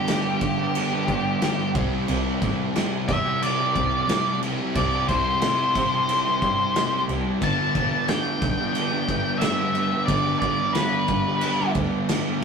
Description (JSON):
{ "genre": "quiet-loud alternative rock", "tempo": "90 BPM", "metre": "4/4", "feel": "straight", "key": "G major", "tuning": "A4 = 436 Hz", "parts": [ { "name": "octave-fuzz lead guitar", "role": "melody", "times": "0.0-11.7 s", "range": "G4 to A5", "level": "-24 LUFS", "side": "equal", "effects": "distortion" }, { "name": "distorted electric guitar", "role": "riff", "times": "0.0-12.4 s", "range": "G2 to G4", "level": "-31 LUFS", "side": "right 8 dB", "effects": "distortion" }, { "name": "sludgy distorted guitar", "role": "riff", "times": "0.0-12.4 s", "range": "G2 to C4", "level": "-29 LUFS", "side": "right 1 dB", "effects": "overdrive" }, { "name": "thick fuzz guitar", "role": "riff", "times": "0.0-12.4 s", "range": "G2 to G4", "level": "-29 LUFS", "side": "left 6 dB", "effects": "distortion" }, { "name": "loose indie drum kit", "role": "drums", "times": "0.1-12.2 s", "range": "crash cymbal, kick drum, snare drum", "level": "-28 LUFS", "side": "right 1 dB", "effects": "none" }, { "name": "rich double bass", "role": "bass", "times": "0.4-12.4 s", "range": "E1 to C3", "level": "-30 LUFS", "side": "equal", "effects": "none" } ], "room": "moderate studio reverb, RT60 0.7 s", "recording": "rough rehearsal-room recording, tube saturation", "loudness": "-20 LUFS", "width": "side -6 dB against mid", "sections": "0.0-12.4 A section", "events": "none", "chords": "0.0 G; 1.8 C; 7.4 G", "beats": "0.08 0.75 1.42 | 2.08 2.75 3.42 4.09 | 4.75 5.42 6.09 6.75 | 7.42 8.09 8.76 9.42 | 10.09 10.76 11.43 12.09" }